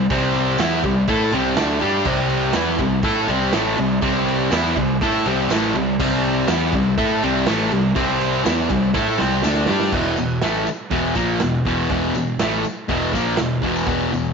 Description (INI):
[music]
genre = garage rock duo or trio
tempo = 122 BPM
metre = 4/4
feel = straight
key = E minor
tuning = A4 = 439 Hz
[part]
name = fuzz guitar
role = riff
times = 0.0-14.3 s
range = E2 to A4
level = -18 LUFS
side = equal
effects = distortion
[part]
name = picked electric bass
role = bass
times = 0.0-14.3 s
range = E1 to A2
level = -26 LUFS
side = left 1 dB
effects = none
[part]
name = raw garage drum kit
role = drums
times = 0.1-14.0 s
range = crash cymbal, kick drum, ride cymbal, snare drum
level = -25 LUFS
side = right 4 dB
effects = none
[part]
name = tambourine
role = percussion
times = 0.6-14.3 s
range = none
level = -38 LUFS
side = left 14 dB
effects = none
[sound]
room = light reverb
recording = 1960s-style stereo, nothing above 7.7 kHz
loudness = -17 LUFS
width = side -5 dB against mid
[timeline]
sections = 0.0-9.9 A section; 9.9-14.3 B section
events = drum fill 9.0-9.9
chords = 0.0 C5; 9.9 E5